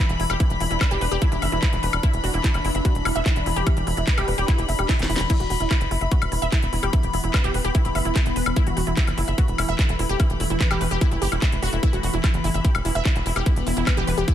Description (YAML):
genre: psychedelic trance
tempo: 147 BPM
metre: 4/4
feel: straight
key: unclear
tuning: A4 = 440 Hz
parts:
  - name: evolving wavetable pad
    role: sustained chords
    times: 0.0-14.3 s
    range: E3 to D4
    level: -30 LUFS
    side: left 1 dB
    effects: phaser, built-in reverb, sidechain pumping
  - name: wide unison pluck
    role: riff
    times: 0.0-14.3 s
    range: E4 to E5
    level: -28 LUFS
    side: moving between left 3 dB and right 5 dB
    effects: auto-pan, sidechain pumping, digital delay
  - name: rich chamber string section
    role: texture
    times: 0.0-14.3 s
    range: B5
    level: -31 LUFS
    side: left 6 dB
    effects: sidechain pumping
  - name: tight sequencer bass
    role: bass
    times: 0.1-14.2 s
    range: E1 to F#1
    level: -25 LUFS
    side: equal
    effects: tube saturation
  - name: drum and bass drum kit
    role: drums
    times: 0.1-14.3 s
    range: crash cymbal, handclaps, hi-hat, snare drum, woodblock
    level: -28 LUFS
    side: left 2 dB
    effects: studio reverb
  - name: electronic kick drum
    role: drums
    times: 0.4-14.3 s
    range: none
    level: -20 LUFS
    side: equal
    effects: studio reverb
room: digital ambience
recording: none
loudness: -19 LUFS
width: side -11 dB against mid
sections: 0.0-14.3 A section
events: drum fill 4.9-5.3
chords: 0.0 E5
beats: | 0.40 0.81 1.22 1.62 | 2.03 2.44 2.85 3.26 | 3.67 4.07 4.48 4.89 | 5.30 5.71 6.12 6.52 | 6.93 7.34 7.75 8.16 | 8.56 8.97 9.38 9.79 | 10.20 10.61 11.01 11.42 | 11.83 12.24 12.64 13.05 | 13.46 13.87 14.28